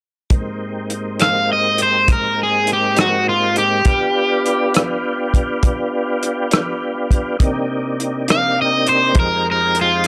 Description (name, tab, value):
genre	slow blues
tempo	68 BPM (dotted quarters)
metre	12/8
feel	straight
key	unclear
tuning	A4 = 440 Hz
part	tonewheel organ	sustained chords	0.3-10.1 s	F2 to G4	-23 LUFS	equal	slow rotary speaker, chorus vibrato
part	warm soul drum kit	drums	0.3-10.1 s	hi-hat, kick drum, rim click	-19 LUFS	equal	none
part	cranked stack guitar	melody	1.2-10.1 s	F4 to F5	-18 LUFS	equal	overdrive
room	light reverb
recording	none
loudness	-17 LUFS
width	mono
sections	0.3-10.1 A section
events	none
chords	0.3 Abmaj7; 3.9 G7; 7.4 Cm7; 9.2 Fm7